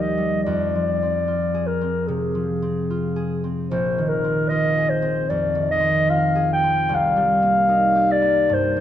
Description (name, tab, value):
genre	classical, impressionist duo for clarinet and harp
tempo	74 BPM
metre	4/4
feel	rubato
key	unclear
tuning	A4 = 441 Hz
part	dark clarinet	melody	0.0-8.8 s	Ab4 to G5	-20 LUFS	left 2 dB	none
part	concert harp	accompaniment	0.0-8.8 s	Bb1 to Ab4	-23 LUFS	right 1 dB	none
room	moderate scoring stage reverb, RT60 1.6 s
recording	dark, warm production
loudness	-18 LUFS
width	side -10 dB against mid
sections	0.0-8.8 A section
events	none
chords	0.5 Fm6; 3.7 Bb9sus4; 6.9 Cm7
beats	| 0.46 1.28 2.09 2.91 | 3.72 4.51 5.30 6.10 | 6.91 7.71 8.51